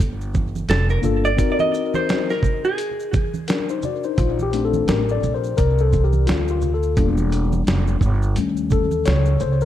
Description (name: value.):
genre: hip hop, jazz-hop.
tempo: 86 BPM.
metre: 4/4.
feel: swing 58% on 16ths.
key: Bb major.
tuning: A4 = 440 Hz.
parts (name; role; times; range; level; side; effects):
upright bass; bass; 0.0-9.7 s; E1 to Eb2; -20 LUFS; right 1 dB; none.
dusty soul sampler-style drum kit; drums; 0.0-9.6 s; hi-hat, kick drum, shaker, snare drum; -22 LUFS; right 1 dB; none.
maracas and congas; percussion; 0.0-9.7 s; none; -31 LUFS; right 6 dB; tape echo.
vintage hollow-body jazz guitar; melody; 0.7-3.3 s; Ab4 to Eb5; -23 LUFS; right 2 dB; tape echo.
mellow tine electric piano; accompaniment; 1.0-9.7 s; G3 to D5; -23 LUFS; left 7 dB; medium stereo tremolo, tape echo.
room: light reverb.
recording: echo-heavy mix.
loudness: -17 LUFS.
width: side -12 dB against mid.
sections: 0.0-4.2 A section; 4.2-9.7 A section.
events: hollow-body jazz guitar solo 0.0-4.2; tine electric piano solo 4.2-9.7.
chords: 0.0 Gm7; 1.4 Ab9; 4.2 Bbmaj7; 7.0 Em7b5; 8.4 Eb7#11.